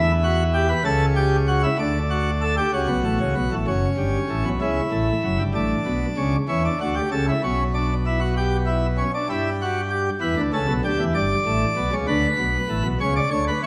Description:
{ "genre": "classical, baroque-style 3-part fugue for pipe organ", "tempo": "64 BPM (dotted quarters)", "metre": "12/8", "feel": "straight", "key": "G major", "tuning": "A4 = 440 Hz", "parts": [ { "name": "pipe organ, plenum", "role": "solo", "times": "0.0-13.7 s", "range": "F#1 to D5", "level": "-22 LUFS", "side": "equal", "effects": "none" } ], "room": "wet scoring stage reverb, RT60 1.6 s", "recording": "none", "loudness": "-22 LUFS", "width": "mono", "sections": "0.0-3.7 A section; 3.7-13.7 B section", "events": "none", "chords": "0.0 A7/E; 1.8 D; 3.7 F#m; 5.6 D/A; 7.4 G/B; 9.3 Em/G; 11.1 G; 13.0 N.C." }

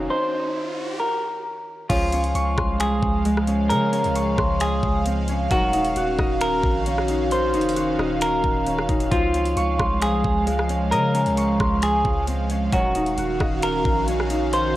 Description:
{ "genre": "hip hop, atmospheric cloud-rap", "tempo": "133 BPM", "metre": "4/4", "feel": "half-time", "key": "Db major", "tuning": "A4 = 440 Hz", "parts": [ { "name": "airy breathy pad", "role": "sustained chords", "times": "0.0-14.8 s", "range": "Eb3 to F5", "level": "-25 LUFS", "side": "right 1 dB", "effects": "chorus, sidechain pumping, cassette tape" }, { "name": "Celtic harp", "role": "arpeggios", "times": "0.0-14.8 s", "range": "Db3 to Db6", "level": "-27 LUFS", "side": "left 1 dB", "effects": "cassette tape, analog delay" }, { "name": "long sustained 808-style bass", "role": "bass", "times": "0.0-14.8 s", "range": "Eb1 to Db3", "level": "-27 LUFS", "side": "equal", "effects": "none" }, { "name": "riser", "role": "sound effects", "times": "0.0-1.0 s", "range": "none", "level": "-33 LUFS", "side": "right 2 dB", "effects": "none" }, { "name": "kora", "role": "texture", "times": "0.0-14.8 s", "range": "Gb3 to F5", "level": "-34 LUFS", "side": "equal", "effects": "cassette tape" }, { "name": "semi-hollow electric guitar", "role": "melody", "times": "0.1-14.8 s", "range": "F4 to C5", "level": "-24 LUFS", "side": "equal", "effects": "lush chorus, cassette tape, analog delay" }, { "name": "trap drum kit", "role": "drums", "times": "1.9-14.6 s", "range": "crash cymbal, finger snaps, hi-hat, kick drum, rim click", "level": "-26 LUFS", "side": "equal", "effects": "none" } ], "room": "moderate studio reverb, RT60 0.6 s", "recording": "home recording on cassette", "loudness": "-19 LUFS", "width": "side -15 dB against mid", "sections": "0.0-1.9 A section; 1.9-14.8 B section", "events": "riser 0.0-1.9; filter sweep 0.0-1.9", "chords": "0.0 Ebm7; 1.9 Dbmaj7; 5.5 Ebm9; 9.1 Dbmaj7; 12.7 Ebm9" }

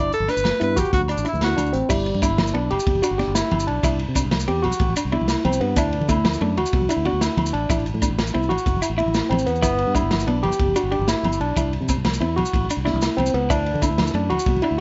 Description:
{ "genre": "highlife guitar band", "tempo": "124 BPM (dotted quarters)", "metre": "12/8", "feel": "straight", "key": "G major", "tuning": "A4 = 439 Hz", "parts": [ { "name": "bright alto saxophone", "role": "melody", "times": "0.0-1.8 s", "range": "D4 to D5", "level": "-25 LUFS", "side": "equal", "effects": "none" }, { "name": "clean electric guitar", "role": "accompaniment", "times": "0.0-14.7 s", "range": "A3 to E4", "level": "-31 LUFS", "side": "equal", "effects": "none" }, { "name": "barky tine electric piano", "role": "arpeggios", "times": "0.0-14.8 s", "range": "G3 to G4", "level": "-26 LUFS", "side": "equal", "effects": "phaser, tape echo" }, { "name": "fingered electric bass", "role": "bass", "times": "0.0-14.8 s", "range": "F#1 to D3", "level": "-28 LUFS", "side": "equal", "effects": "none" }, { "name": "crunchy breakbeat drum kit", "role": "drums", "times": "0.1-14.7 s", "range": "crash cymbal, hi-hat, kick drum, ride cymbal, snare drum", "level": "-28 LUFS", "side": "equal", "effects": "none" }, { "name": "congas", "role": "percussion", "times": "0.1-14.6 s", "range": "none", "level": "-30 LUFS", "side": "equal", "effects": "none" }, { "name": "maracas", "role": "percussion", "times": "0.1-14.5 s", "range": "none", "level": "-35 LUFS", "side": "equal", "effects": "none" }, { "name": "agogo bells", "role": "percussion", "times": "0.3-14.8 s", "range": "none", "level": "-35 LUFS", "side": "equal", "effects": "none" } ], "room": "light reverb", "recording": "nothing above 7.7 kHz", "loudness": "-21 LUFS", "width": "mono", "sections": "0.0-1.9 A section; 1.9-14.8 B section", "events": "none", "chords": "0.0 G; 0.9 D7; 1.9 Gmaj7; 3.8 Cadd9; 5.8 D; 7.7 Am; 9.6 Gmaj7; 11.6 Cadd9; 13.5 D" }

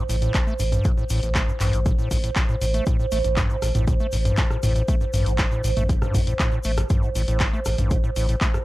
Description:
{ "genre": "acid house", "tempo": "119 BPM", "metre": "4/4", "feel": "straight", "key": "A minor", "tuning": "A4 = 440 Hz", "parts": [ { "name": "warbly tape-like pad", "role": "sustained chords", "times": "0.0-8.6 s", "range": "C5", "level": "-29 LUFS", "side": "right 3 dB", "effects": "chorus, built-in reverb, sidechain pumping" }, { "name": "acid bass, square", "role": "riff", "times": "0.0-8.6 s", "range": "A1 to A3", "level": "-27 LUFS", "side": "equal", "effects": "overdrive" }, { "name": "saturated sub bass", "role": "bass", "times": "0.1-8.4 s", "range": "A1", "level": "-24 LUFS", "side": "equal", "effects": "sidechain pumping" }, { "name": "punchy analog drum machine", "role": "drums", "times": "0.1-8.6 s", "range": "handclaps, hi-hat, rim click, toms", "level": "-28 LUFS", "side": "equal", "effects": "none" }, { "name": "egg shaker", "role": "percussion", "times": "0.1-8.6 s", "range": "none", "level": "-41 LUFS", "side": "left 2 dB", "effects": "none" }, { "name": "electronic kick drum", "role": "drums", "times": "0.3-8.5 s", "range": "none", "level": "-22 LUFS", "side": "equal", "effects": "none" } ], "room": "little or no reverb", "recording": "dry, gritty hardware recording", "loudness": "-20 LUFS", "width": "side -18 dB against mid", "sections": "0.0-8.6 A section", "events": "none", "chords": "0.0 A5" }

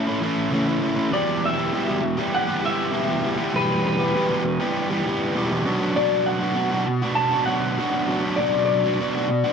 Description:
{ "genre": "rock", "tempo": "99 BPM", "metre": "4/4", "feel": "straight", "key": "E dorian", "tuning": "A4 = 443 Hz", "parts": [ { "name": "electric guitar through a small old amp", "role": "melody", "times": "0.0-9.5 s", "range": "B4 to A5", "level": "-24 LUFS", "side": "left 2 dB", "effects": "wide subtle chorus, plate reverb, tape echo" }, { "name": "overdriven semi-hollow guitar", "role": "riff", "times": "0.0-9.5 s", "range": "E2 to G4", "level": "-22 LUFS", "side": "right 1 dB", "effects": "none" } ], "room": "moderate small room reverb, RT60 0.6 s", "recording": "dark, warm production", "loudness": "-20 LUFS", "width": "side -6 dB against mid", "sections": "0.0-1.1 A section; 1.1-9.5 A section", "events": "none", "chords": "0.0 A; 1.1 Em; 5.7 Bm" }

